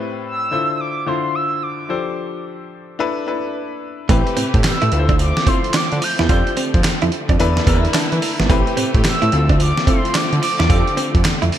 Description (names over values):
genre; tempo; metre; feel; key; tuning
R&B, new jack swing; 109 BPM; 4/4; swing 64% on 16ths; unclear; A4 = 440 Hz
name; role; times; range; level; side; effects
clear baby grand piano; accompaniment; 0.0-11.6 s; A2 to A5; -24 LUFS; left 5 dB; none
mellow horn-like synth lead; melody; 0.3-11.2 s; C6 to G6; -23 LUFS; right 1 dB; chorus
warm studio string section; sustained chords; 4.1-11.6 s; C3 to B4; -25 LUFS; right 1 dB; none
direct-recorded clean electric guitar; riff; 4.1-11.6 s; A3 to F4; -24 LUFS; right 5 dB; lush chorus
fat analog bass; bass; 4.1-11.5 s; G#1 to E3; -18 LUFS; right 1 dB; none
dusty soul sampler-style drum kit; drums; 4.1-11.6 s; handclaps, hi-hat, kick drum, snare drum, tambourine; -18 LUFS; right 1 dB; gated reverb
room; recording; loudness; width
light reverb, digital ambience; bright 1980s-style digital production; -15 LUFS; side -11 dB against mid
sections
0.0-11.6 A section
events
grand piano fill 7.7-8.5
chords
0.0 Am9; 0.5 Dm7; 1.9 F6; 3.0 E7sus4; 4.1 Am9; 4.9 Dm7; 6.3 F6; 7.4 E7sus4; 8.5 Am9; 9.3 Dm7; 10.7 F6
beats
0.24 0.79 1.34 | 1.89 2.44 2.99 3.54 | 4.09 4.64 5.19 5.75 | 6.29 6.85 7.40 7.95 | 8.50 9.05 9.60 10.15 | 10.70 11.25